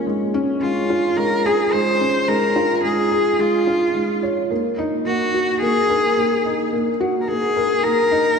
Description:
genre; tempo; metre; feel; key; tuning
electronica; 108 BPM; 4/4; straight; unclear; A4 = 440 Hz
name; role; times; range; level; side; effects
felt-muted upright piano; riff; 0.0-8.4 s; Ab3 to Db5; -19 LUFS; equal; digital delay
rich cello; melody; 0.6-8.4 s; F4 to C5; -20 LUFS; left 1 dB; digital delay
room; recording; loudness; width
wet concert hall reverb, RT60 1.9 s; none; -17 LUFS; side -6 dB against mid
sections
0.0-8.4 A section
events
none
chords
0.0 Bbm7; 4.5 Ebm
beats
| 0.06 0.62 1.17 1.73 | 2.29 2.84 3.40 3.95 | 4.51 5.06 5.62 6.17 | 6.73 7.29 7.84

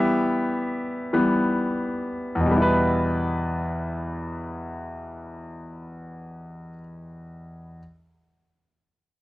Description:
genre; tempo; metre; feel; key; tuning
pop; 43-48 BPM (dotted quarters); 6/8; straight; E minor; A4 = 442 Hz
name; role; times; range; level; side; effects
bright concert grand piano; solo; 0.0-7.8 s; E2 to E5; -24 LUFS; left 1 dB; cassette tape
room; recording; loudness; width
light reverb, studio reverb; home recording on cassette; -22 LUFS; side -17 dB against mid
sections
0.0-2.5 A section; 2.5-5.3 B section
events
slowing down 0.0-2.5; grand piano solo 0.0-2.5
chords
0.0 Em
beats
1.13 | 2.48 3.88

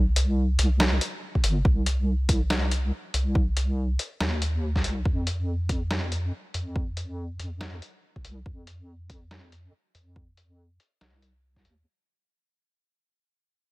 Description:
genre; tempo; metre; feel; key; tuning
deep dubstep; 141 BPM; 4/4; swing 60% on 16ths, half-time; unclear; A4 = 439 Hz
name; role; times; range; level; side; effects
deep soft wobble bass; bass; 0.0-11.8 s; G1 to F2; -26 LUFS; equal; chorus
trip hop sampler-style drum kit; drums; 0.2-11.8 s; hi-hat, snare drum; -28 LUFS; equal; low-pass filter on hats, low-pass filter on snare, low-pass filter on room
electronic kick drum; drums; 1.4-11.6 s; none; -24 LUFS; equal; none
room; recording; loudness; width
little or no reverb; none; -24 LUFS; side -21 dB against mid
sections
0.0-11.9 A section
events
fade-out 0.0-11.9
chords
none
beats
0.37 0.80 1.22 | 1.65 2.08 2.50 2.93 | 3.35 3.78 4.20 4.63 | 5.05 5.48 5.91 6.33 | 6.76 7.18 7.61 8.03 | 8.46 8.88 9.31 9.73 | 10.16 10.59 11.01 11.44

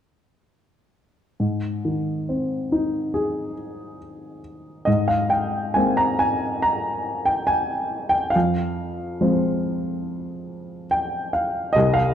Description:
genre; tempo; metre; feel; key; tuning
classical, lyrical solo piano; 70 BPM; 4/4; rubato; Ab major; A4 = 441 Hz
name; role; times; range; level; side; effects
dark baby grand piano; solo; 1.4-12.1 s; C2 to Bb5; -21 LUFS; equal; none
room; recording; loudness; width
moderate scoring stage reverb, RT60 1.9 s; dark, warm production; -20 LUFS; side -9 dB against mid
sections
1.4-4.9 A section; 4.9-12.1 B section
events
grand piano fill 10.5-11.8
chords
1.4 Ab; 4.9 Abadd9; 8.3 Fm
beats
| 1.41 2.29 3.14 4.00 | 4.87 5.76 6.64 7.49 | 8.35 9.21 10.06 10.90 | 11.75

